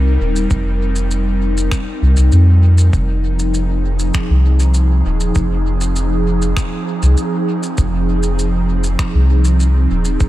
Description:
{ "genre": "ambient dub", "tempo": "99 BPM", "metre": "4/4", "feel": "straight", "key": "F minor", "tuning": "A4 = 441 Hz", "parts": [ { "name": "airy breathy pad", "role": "sustained chords", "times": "0.0-10.3 s", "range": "F3 to Bb4", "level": "-20 LUFS", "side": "right 1 dB", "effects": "chorus" }, { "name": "soft dub sub bass", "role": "bass", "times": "0.0-10.3 s", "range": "Eb1 to F2", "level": "-13 LUFS", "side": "equal", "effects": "none" }, { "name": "shaker and finger snaps", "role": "drums", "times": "0.4-10.3 s", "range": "none", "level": "-27 LUFS", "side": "equal", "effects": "dub echo" }, { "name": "electronic kick drum", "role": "drums", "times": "0.5-10.3 s", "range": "none", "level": "-18 LUFS", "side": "equal", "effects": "overdrive" } ], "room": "studio reverb", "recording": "none", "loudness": "-13 LUFS", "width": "side -15 dB against mid", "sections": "0.0-10.3 A section", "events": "none", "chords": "0.0 Cm7; 2.9 Fm7", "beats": "| 0.51 1.11 1.72 2.33 | 2.93 3.54 4.14 4.75 | 5.36 5.96 6.57 7.17 | 7.78 8.39 8.99 9.60 | 10.21" }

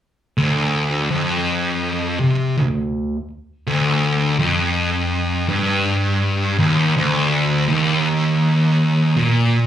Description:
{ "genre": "metal", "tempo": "55 BPM", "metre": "4/4", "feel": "swing 66% on 8ths", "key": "D minor", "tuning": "A4 = 440 Hz", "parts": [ { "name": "thick fuzz guitar", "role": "riff", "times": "0.4-9.7 s", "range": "D2 to C3", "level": "-16 LUFS", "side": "equal", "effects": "distortion, slapback echo" } ], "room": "wet club reverb, RT60 0.7 s", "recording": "live gig heard through the venue's PA, club reverb", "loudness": "-16 LUFS", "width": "side -10 dB against mid", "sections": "0.4-9.7 A section", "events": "none", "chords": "none", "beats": "| 0.38 1.48 2.58 3.67 | 4.77 5.87 6.97 8.07 | 9.17" }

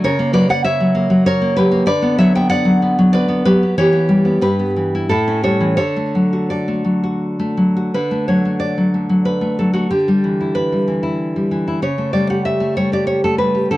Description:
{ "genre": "romantic piece for solo classical guitar", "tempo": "81-101 BPM", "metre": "3/4", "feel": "rubato", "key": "D major", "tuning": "A4 = 440 Hz", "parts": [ { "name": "nylon-string guitar", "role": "solo", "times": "0.0-13.8 s", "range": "G2 to G5", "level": "-14 LUFS", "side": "equal", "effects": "none" } ], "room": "light reverb", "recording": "dry, close 1970s-style studio recording", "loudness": "-14 LUFS", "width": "side -17 dB against mid", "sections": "0.0-7.9 A section; 7.9-13.8 B section", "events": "none", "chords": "0.0 F#7/C#; 1.9 Bm/D; 3.8 Em; 4.4 Em/G; 5.1 A7; 5.8 D; 9.9 Em7/D; 11.8 A7/C#", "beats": "| 0.05 0.65 1.25 | 1.86 2.48 3.12 | 3.76 4.41 5.09 | 5.79 6.50 7.21 | 7.93 8.61 9.24 | 9.88 10.54 11.17 | 11.80 12.44 13.06 | 13.70" }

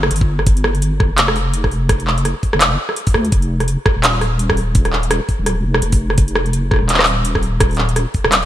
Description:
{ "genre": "half-time drum and bass", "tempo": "168 BPM", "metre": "4/4", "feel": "swing 58% on 16ths, half-time", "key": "unclear", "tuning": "A4 = 440 Hz", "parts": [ { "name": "deep soft wobble bass", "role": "bass", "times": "0.0-8.5 s", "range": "Eb1 to D2", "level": "-18 LUFS", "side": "equal", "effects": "chorus" }, { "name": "drum and bass drum kit", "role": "drums", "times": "0.0-8.4 s", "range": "handclaps, hi-hat, rim click", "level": "-17 LUFS", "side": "equal", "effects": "none" }, { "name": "electronic kick drum", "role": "drums", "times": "0.2-8.2 s", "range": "none", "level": "-16 LUFS", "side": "equal", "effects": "none" } ], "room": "light reverb", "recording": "bright 1980s-style digital production", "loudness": "-14 LUFS", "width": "side -12 dB against mid", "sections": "0.0-8.5 A section", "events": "none", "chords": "none", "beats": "0.11 | 0.47 0.82 1.18 1.54 | 1.89 2.25 2.61 2.96 | 3.32 3.68 4.04 4.39 | 4.75 5.11 5.46 5.82 | 6.18 6.54 6.89 7.25 | 7.61 7.96 8.32" }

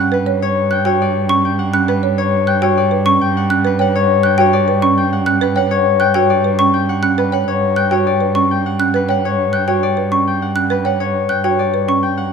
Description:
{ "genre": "classical, minimalist pattern music", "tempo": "102 BPM", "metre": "3/4", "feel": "straight", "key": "G lydian", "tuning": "A4 = 439 Hz", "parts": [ { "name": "concert harp", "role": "melody", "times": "0.0-12.3 s", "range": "B4 to G5", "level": "-18 LUFS", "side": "left 9 dB", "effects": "none" }, { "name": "folk marimba with medium mallets", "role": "arpeggios", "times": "0.0-12.1 s", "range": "C#4 to C#5", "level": "-20 LUFS", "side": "right 8 dB", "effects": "none" }, { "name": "xylophone with soft rubber mallets", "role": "arpeggios", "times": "0.0-12.1 s", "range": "G5 to F#6", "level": "-19 LUFS", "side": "left 1 dB", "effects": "none" }, { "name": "rich cello", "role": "bass", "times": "0.0-12.3 s", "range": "G2", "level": "-19 LUFS", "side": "right 3 dB", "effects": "none" } ], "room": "light reverb", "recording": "close, detailed microphones", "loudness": "-13 LUFS", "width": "side -6 dB against mid", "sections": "0.0-12.3 A section", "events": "none", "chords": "0.0 Gmaj7", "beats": "| 0.41 1.00 1.59 | 2.18 2.77 3.35 | 3.94 4.53 5.12 | 5.71 6.30 6.88 | 7.47 8.06 8.65 | 9.24 9.83 10.41 | 11.00 11.59 12.18" }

